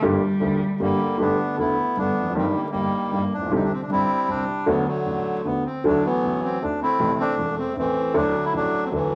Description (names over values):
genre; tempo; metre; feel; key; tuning
tango; 156 BPM; 3/4; rubato; G major; A4 = 440 Hz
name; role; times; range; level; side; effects
warm cello; second line; 0.0-1.0 s; G3; -28 LUFS; equal; none
warm grand piano; accompaniment; 0.0-9.1 s; E1 to G4; -27 LUFS; equal; none
clear double bass; bass; 0.0-9.2 s; E1 to D2; -37 LUFS; equal; none
bandoneon; melody; 0.8-9.2 s; D3 to E4; -25 LUFS; equal; none
room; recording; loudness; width
wet club reverb, RT60 0.9 s; vinyl crackle; -23 LUFS; mono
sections
0.0-1.2 A section; 1.2-9.2 B section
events
cello solo 0.0-1.2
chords
0.0 Gm; 1.2 Gadd9; 2.4 Eb/G; 3.5 Csus2; 4.7 D; 5.8 Dadd9; 7.0 Am; 8.1 Dadd9